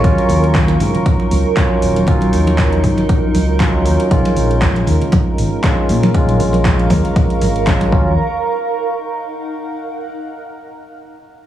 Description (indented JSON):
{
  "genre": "deep house",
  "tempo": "118 BPM",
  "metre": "4/4",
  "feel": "swing 56% on 16ths",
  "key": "Eb minor",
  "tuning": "A4 = 440 Hz",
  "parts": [
    { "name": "barky tine electric piano", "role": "stabs", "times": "0.0-8.1 s", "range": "Gb3 to F4", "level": "-19 LUFS", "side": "equal", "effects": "sidechain pumping, low-pass filter, tape echo" },
    { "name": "smooth gliding synth bass", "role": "bass", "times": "0.0-8.2 s", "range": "Eb1 to Bb2", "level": "-17 LUFS", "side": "equal", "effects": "sidechain pumping" },
    { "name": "deep house drum kit", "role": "drums", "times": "0.0-7.9 s", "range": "handclaps, hi-hat", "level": "-25 LUFS", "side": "equal", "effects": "overdrive, studio reverb" },
    { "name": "electronic kick drum", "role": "drums", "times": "0.0-8.0 s", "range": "none", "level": "-16 LUFS", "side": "equal", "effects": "overdrive, studio reverb" },
    { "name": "granular cloud pad", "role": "texture", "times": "0.0-10.2 s", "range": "Eb4 to Db6", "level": "-22 LUFS", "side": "right 3 dB", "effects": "built-in reverb, sidechain pumping" },
    { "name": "congas", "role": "percussion", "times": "0.2-7.9 s", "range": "none", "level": "-20 LUFS", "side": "right 1 dB", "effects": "none" }
  ],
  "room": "digital ambience",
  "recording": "heavily compressed radio sound, cassette tape, studio reverb",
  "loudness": "-12 LUFS",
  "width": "side -12 dB against mid",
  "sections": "0.0-8.2 A section; 8.2-10.2 B section",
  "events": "filter sweep on analog synth bass 0.0-8.2; filter sweep on tine electric piano 0.0-8.2",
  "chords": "0.0 Ebm9; 4.1 Bbm7; 7.9 Ebm9; 8.2 Ebmadd9",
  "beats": "| 0.04 0.55 1.06 1.57 | 2.08 2.58 3.09 3.60 | 4.11 4.62 5.13 5.63 | 6.14 6.65 7.16 7.67 | 8.18 8.69 9.20 9.70"
}